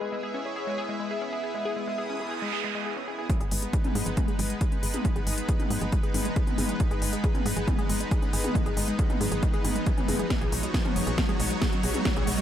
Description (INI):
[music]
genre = uplifting trance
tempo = 137 BPM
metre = 4/4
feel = straight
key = unclear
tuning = A4 = 440 Hz
[part]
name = warm velvety synth lead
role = second line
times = 0.0-3.2 s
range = B4 to E5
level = -36 LUFS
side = equal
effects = chorus, dub echo
[part]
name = supersaw pad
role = sustained chords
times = 0.0-12.4 s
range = G#3 to D#6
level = -33 LUFS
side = right 1 dB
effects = sidechain pumping
[part]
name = wide unison pluck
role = arpeggios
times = 0.0-12.4 s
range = G#3 to G#4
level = -35 LUFS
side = left 3 dB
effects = cassette tape, sidechain pumping, digital delay
[part]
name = noise sweep and riser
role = sound effects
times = 1.9-12.4 s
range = none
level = -36 LUFS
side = right 2 dB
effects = none
[part]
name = electronic kick drum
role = drums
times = 3.3-12.1 s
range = none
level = -27 LUFS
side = equal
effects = none
[part]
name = techno drum kit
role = drums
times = 3.3-12.4 s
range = hi-hat, snare drum, toms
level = -30 LUFS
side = equal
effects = none
[part]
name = tight sequencer bass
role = bass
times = 3.4-12.4 s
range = F#1 to G#2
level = -32 LUFS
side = equal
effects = sidechain pumping
[sound]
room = little or no reverb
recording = low-pass filter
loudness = -25 LUFS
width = side -10 dB against mid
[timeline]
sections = 0.0-3.3 A section; 3.3-12.4 B section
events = filter sweep 0.0-3.3; noise sweep 1.9-3.3; build-up 3.3-12.4; riser 3.3-12.4; filter sweep on synth pluck 3.3-12.4; drum fill 10.3-12.4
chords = 0.0 E; 3.3 Badd9